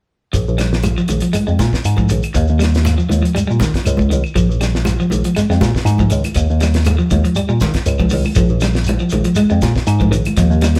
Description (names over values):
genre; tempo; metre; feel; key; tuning
afrobeat; 120 BPM; 4/4; swing 53% on 16ths; Bb dorian; A4 = 440 Hz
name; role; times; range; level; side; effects
clean electric guitar; arpeggios; 0.3-10.8 s; Eb3 to Ab3; -21 LUFS; equal; none
bell-like tine electric piano; bass; 0.3-10.8 s; Bb1 to Eb3; -18 LUFS; equal; none
damped 70s drum kit; drums; 0.3-10.8 s; hi-hat, kick drum, snare drum; -24 LUFS; equal; none
shekere; percussion; 0.3-10.8 s; none; -27 LUFS; equal; none
claves; percussion; 0.6-10.8 s; none; -34 LUFS; equal; none
congas; percussion; 0.8-10.4 s; none; -24 LUFS; equal; none
room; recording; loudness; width
moderate studio reverb, RT60 0.9 s; band playing live in one room; -15 LUFS; mono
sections
0.3-10.8 A section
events
none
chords
0.3 Bb5; 2.4 Eb7; 4.4 Bb7(no3); 6.4 Eb7; 8.4 Bb5